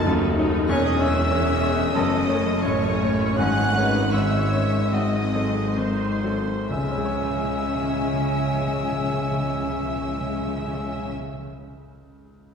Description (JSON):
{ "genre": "classical, romantic movement for piano and orchestra", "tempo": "63-98 BPM", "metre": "4/4", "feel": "rubato", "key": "C# minor", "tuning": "A4 = 439 Hz", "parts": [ { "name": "bright grand piano", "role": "melody", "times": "0.0-12.5 s", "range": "E1 to C#5", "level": "-26 LUFS", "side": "left 2 dB", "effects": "none" }, { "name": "rich studio violin section", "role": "melody", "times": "0.0-11.1 s", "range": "B5 to F#6", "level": "-36 LUFS", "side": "left 1 dB", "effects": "none" }, { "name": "clear oboe", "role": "second line", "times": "0.0-11.1 s", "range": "B#4 to F#5", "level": "-31 LUFS", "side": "equal", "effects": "none" }, { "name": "warm studio violin section", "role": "second line", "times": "0.0-11.1 s", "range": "B#4 to F#5", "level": "-34 LUFS", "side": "left 1 dB", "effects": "none" }, { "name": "rich studio viola section", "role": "accompaniment", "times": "0.0-11.1 s", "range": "A3 to C#5", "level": "-31 LUFS", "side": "right 1 dB", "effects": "none" }, { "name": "warm French horn section", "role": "sustained chords", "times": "0.0-11.1 s", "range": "F#3 to D#4", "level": "-30 LUFS", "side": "left 3 dB", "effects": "none" }, { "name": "clear studio cello section", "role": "bass", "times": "0.0-11.1 s", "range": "D#2 to C#3", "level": "-30 LUFS", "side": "right 3 dB", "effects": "none" }, { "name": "mellow tuba", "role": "bass", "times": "0.0-11.1 s", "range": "E1 to D#2", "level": "-32 LUFS", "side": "right 3 dB", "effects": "none" }, { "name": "rich studio double bass section", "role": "bass", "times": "0.0-11.1 s", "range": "E1 to D#2", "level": "-33 LUFS", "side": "right 3 dB", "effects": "none" }, { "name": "bright clarinet", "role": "second line", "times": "0.7-11.1 s", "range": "B#3 to C#4", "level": "-34 LUFS", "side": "left 5 dB", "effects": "none" }, { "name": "silver concert flute", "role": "second line", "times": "0.7-11.1 s", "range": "F#5 to A5", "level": "-34 LUFS", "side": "equal", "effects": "none" }, { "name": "timpani", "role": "percussion", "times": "3.4-11.3 s", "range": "G#2 to C#3", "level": "-31 LUFS", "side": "equal", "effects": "none" } ], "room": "wet concert hall reverb, RT60 2.2 s", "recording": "minimal, uncompressed stereo recording", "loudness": "-20 LUFS", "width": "side -6 dB against mid", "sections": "0.0-6.7 A section; 6.7-10.3 B section", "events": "slowing down 0.0-6.7", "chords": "0.0 D#dim/F#; 0.7 C#m/E; 1.9 F#m; 3.4 C#m/G#; 4.9 G#7b9; 6.7 C#m" }